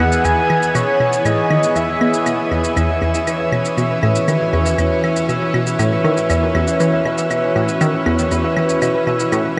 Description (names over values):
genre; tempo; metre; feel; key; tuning
ambient, sequencer-driven space music; 119 BPM; 4/4; straight; E major; A4 = 440 Hz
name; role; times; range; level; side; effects
pulse-width lead; melody; 0.0-2.5 s; C#5 to G#5; -23 LUFS; equal; chorus, delay
evolving wavetable pad; sustained chords; 0.0-9.6 s; E3 to G#4; -23 LUFS; equal; chorus, built-in reverb
analog pluck; riff; 0.0-9.5 s; E2 to B3; -22 LUFS; equal; chorus, delay
claves and shaker; percussion; 0.0-9.4 s; none; -30 LUFS; equal; delay
wind-like tuned noise texture; texture; 0.4-9.6 s; E3 to F#4; -30 LUFS; equal; none
concert harp; arpeggios; 2.8-9.6 s; E4 to E5; -23 LUFS; equal; delay
room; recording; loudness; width
wet shimmer reverb, RT60 8.1 s; nothing above 10.6 kHz; -17 LUFS; mono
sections
0.0-9.6 A section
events
filter sweep on synth arpeggio sound 0.0-9.6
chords
0.0 E